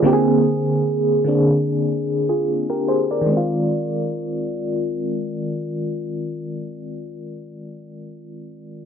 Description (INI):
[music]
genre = R&B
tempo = 74 BPM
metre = 4/4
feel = swing 54% on 16ths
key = F dorian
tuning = A4 = 440 Hz
[part]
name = FM electric piano with tremolo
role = accompaniment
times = 0.0-8.9 s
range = D3 to D5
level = -19 LUFS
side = equal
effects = phaser
[sound]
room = light reverb, digital ambience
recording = dry, gritty hardware recording, low-pass filter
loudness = -18 LUFS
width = side -8 dB against mid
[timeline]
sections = 0.0-3.3 A section; 3.3-6.5 B section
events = filter sweep 0.0-3.3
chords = 0.0 Bb9; 3.3 Fm7